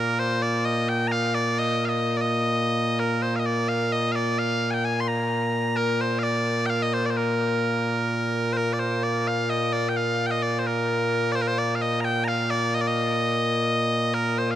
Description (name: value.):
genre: scottish traditional, Scottish pipe music.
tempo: 86 BPM (dotted quarters).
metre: 6/8.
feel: straight.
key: Bb major.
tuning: A4 = 440 Hz.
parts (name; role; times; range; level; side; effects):
loud bright bagpipes; solo; 0.0-14.6 s; Bb2 to C6; -22 LUFS; equal; none.
room: moderate huge ambient reverb, RT60 5.0 s.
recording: dark, warm production.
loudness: -22 LUFS.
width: side -11 dB against mid.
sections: 0.0-8.6 A section; 8.6-14.6 A section.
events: none.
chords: none.